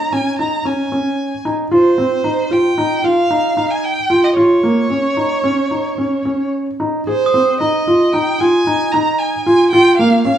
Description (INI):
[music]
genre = contemporary instrumental, chamber music in an uneven meter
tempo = 113 BPM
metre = 5/4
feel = straight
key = unclear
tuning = A4 = 439 Hz
[part]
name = rich violin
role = melody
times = 0.0-10.4 s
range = C5 to Bb5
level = -18 LUFS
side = right 2 dB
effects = none
[part]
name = felt-muted upright piano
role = arpeggios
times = 0.0-10.4 s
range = Bb3 to Ab4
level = -14 LUFS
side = equal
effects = none
[part]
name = glockenspiel with hard plastic mallets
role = texture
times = 7.3-8.3 s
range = Eb6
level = -23 LUFS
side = equal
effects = none
[sound]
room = moderate recital hall reverb, RT60 1.6 s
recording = small room ambience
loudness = -13 LUFS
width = side -10 dB against mid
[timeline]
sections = 0.0-7.1 A section; 7.1-10.4 B section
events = none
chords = 0.0 Bbm7; 1.7 Fsus2; 4.4 N.C.; 7.1 Ab5; 9.7 Bbm